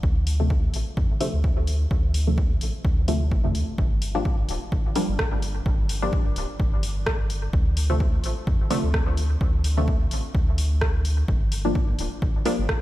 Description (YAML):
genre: dub techno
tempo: 128 BPM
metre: 4/4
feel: swing 56% on 16ths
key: G minor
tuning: A4 = 441 Hz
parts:
  - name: warm sub bass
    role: bass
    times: 0.0-12.8 s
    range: D1 to F2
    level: -24 LUFS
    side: equal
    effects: tube saturation, sidechain pumping
  - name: electronic kick drum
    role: drums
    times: 0.0-12.8 s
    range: none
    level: -24 LUFS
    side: equal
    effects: none
  - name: deep house drum kit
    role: drums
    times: 0.3-12.8 s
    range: hi-hat, rim click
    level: -32 LUFS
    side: equal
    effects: overdrive, dub echo
  - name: filtered dub chord stab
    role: stabs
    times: 0.4-12.6 s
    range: C3 to D4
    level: -29 LUFS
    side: left 1 dB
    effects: chorus, phaser, sidechain pumping, dub echo
room: digital ambience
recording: played on a big sound system in a bare room, stone room reverb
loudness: -21 LUFS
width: side -16 dB against mid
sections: 0.0-3.8 A section; 3.8-12.8 A section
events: filter sweep on synth stab 0.0-3.8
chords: 0.0 Dm7; 3.8 Gm7; 7.5 Dm7; 11.3 Gm7